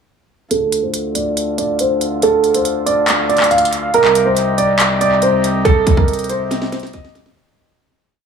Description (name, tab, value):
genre	hip hop, trap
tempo	140 BPM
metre	4/4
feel	half-time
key	D phrygian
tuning	A4 = 440 Hz
part	dark baby grand piano	melody	0.5-7.3 s	A4 to F5	-15 LUFS	right 3 dB	low-pass filter, tape echo
part	hand-pumped harmonium	sustained chords	0.5-7.3 s	C2 to A4	-20 LUFS	left 1 dB	low-pass filter
part	trap drum kit	drums	0.5-7.4 s	handclaps, hi-hat, kick drum, snare drum	-18 LUFS	equal	tape echo
room	moderate spring reverb, RT60 1.5 s, small room ambience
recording	echo-heavy mix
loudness	-13 LUFS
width	side -6 dB against mid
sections	0.5-7.4 breakdown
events	filter sweep 0.5-7.4; fade-out 5.7-7.4; drum fill 6.5-7.4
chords	0.5 Dm; 3.9 Cm